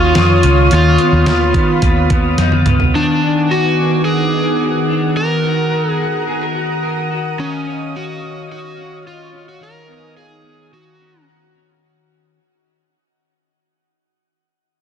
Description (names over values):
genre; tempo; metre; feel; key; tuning
dream pop; 108 BPM; 4/4; straight; Eb minor; A4 = 443 Hz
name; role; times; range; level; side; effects
overdriven slide guitar; melody; 0.0-11.2 s; Db4 to A#4; -19 LUFS; right 1 dB; digital delay, shimmer reverb
lush unison pad; sustained chords; 0.0-11.8 s; Eb3 to D#6; -19 LUFS; right 1 dB; chorus, shimmer reverb
electric guitar at the edge of break-up; arpeggios; 0.0-12.4 s; Eb3 to A#4; -20 LUFS; left 3 dB; lush chorus, digital delay, shimmer reverb
vintage muted picked electric bass; bass; 0.0-2.9 s; Db2 to Eb3; -14 LUFS; right 1 dB; none
clean 12-bit digital drum machine; drums; 0.2-2.9 s; hi-hat, kick drum, snare drum, toms; -17 LUFS; right 1 dB; none
room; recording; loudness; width
moderate plate reverb, RT60 2.5 s; dense, heavily limited modern master; -12 LUFS; side -8 dB against mid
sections
0.0-11.8 A section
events
fade-out 0.3-11.8; drum fill 2.4-2.9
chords
0.0 Eb7sus2; 0.7 Db9/Eb; 2.9 Bm6; 5.2 Bmaj7/D#; 7.4 Ebm9; 9.6 Db9/Eb; 10.7 Ebm7